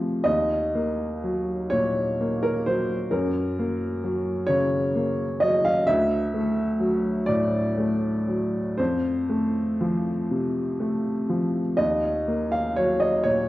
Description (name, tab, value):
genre	neoclassical minimalist piano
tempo	39-45 BPM (dotted quarters)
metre	6/8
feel	rubato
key	Eb dorian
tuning	A4 = 439 Hz
part	clear upright piano	solo	0.0-13.5 s	D2 to F5	-22 LUFS	equal	none
room	wet recital hall reverb, RT60 1.4 s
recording	worn, warbling old tape, cassette tape, warbly pitch drift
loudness	-22 LUFS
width	side -16 dB against mid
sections	0.2-13.5 A section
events	none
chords	0.2 Ebm; 3.1 Gb; 5.9 D; 8.8 F; 11.8 Ebm